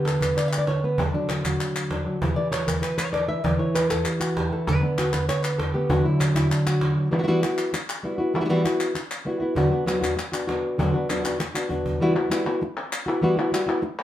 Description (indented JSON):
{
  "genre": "flamenco",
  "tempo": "196 BPM",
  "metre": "4/4",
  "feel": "straight",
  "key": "unclear",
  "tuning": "A4 = 441 Hz",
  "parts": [
    { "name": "flamenco guitar", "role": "melody", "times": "0.0-13.9 s", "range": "D3 to E5", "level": "-22 LUFS", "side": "equal", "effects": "none" },
    { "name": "cajon", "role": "percussion", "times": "0.1-7.0, 9.6-11.9 s", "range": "none", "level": "-28 LUFS", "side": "right 1 dB", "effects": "none" },
    { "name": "palmas hand claps", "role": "percussion", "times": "0.1-14.0 s", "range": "none", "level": "-31 LUFS", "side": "left 2 dB", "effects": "none" }
  ],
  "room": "wet studio reverb, RT60 0.7 s",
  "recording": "heard from further back in the room",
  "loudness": "-21 LUFS",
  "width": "side -12 dB against mid",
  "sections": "0.0-7.1 A section; 7.1-12.0 B section; 12.0-14.0 B section",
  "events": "nylon-string guitar solo 0.0-7.1; drum fill 11.2-12.0",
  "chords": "0.0 Bm/D; 2.2 Em; 4.7 Bm/D; 7.1 Emadd9; 9.6 Bm/D; 12.0 Emadd9"
}